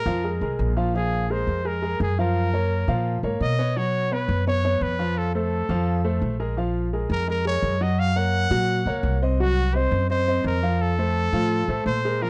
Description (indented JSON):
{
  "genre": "latin, salsa",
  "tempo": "170 BPM",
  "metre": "4/4",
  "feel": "straight",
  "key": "Bb minor",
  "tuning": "A4 = 439 Hz",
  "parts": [
    { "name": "bright trumpet", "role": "melody", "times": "0.0-12.3 s", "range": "Gb4 to Gb5", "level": "-29 LUFS", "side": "equal", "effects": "slapback echo" },
    { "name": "clear grand piano", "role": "accompaniment", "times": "0.1-12.3 s", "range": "F3 to F#5", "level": "-29 LUFS", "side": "equal", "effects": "none" },
    { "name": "upright bass", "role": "bass", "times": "0.1-12.3 s", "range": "Bb1 to Cb3", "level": "-27 LUFS", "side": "equal", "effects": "none" }
  ],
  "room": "little or no reverb",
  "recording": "dry, close 1970s-style studio recording",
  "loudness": "-23 LUFS",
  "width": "mono",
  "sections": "0.9-12.2 A section",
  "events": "none",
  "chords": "0.0 Bb5; 2.4 Gbmaj7; 3.8 Bsus2; 5.2 F; 6.6 Bbm7; 8.0 Gb; 9.4 Cdim; 10.8 F"
}